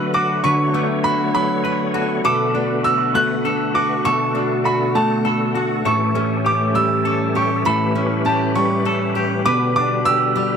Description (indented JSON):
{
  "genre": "six-eight pop ballad",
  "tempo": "66 BPM (dotted quarters)",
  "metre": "6/8",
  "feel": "straight",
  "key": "D major",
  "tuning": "A4 = 440 Hz",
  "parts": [
    { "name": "clear baby grand piano", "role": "melody", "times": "0.0-10.6 s", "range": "A5 to F#6", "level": "-20 LUFS", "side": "right 1 dB", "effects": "ping-pong delay" },
    { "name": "semi-hollow electric guitar", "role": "accompaniment", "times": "0.0-10.6 s", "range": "A2 to B4", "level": "-20 LUFS", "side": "left 1 dB", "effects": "double-tracked left and right" },
    { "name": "bright tonewheel organ", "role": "sustained chords", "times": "0.0-10.6 s", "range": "D3 to C#5", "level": "-25 LUFS", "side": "left 2 dB", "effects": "chorus vibrato, fast rotary speaker" },
    { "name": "picked steel-string acoustic guitar", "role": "arpeggios", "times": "0.0-10.6 s", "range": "E3 to A4", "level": "-26 LUFS", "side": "right 4 dB", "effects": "ping-pong delay" }
  ],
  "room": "light reverb, small room ambience",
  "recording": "none",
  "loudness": "-16 LUFS",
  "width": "side -7 dB against mid",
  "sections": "0.0-10.6 A section",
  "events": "none",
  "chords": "0.0 D6; 2.2 Bm7; 5.9 A7; 9.5 G/B"
}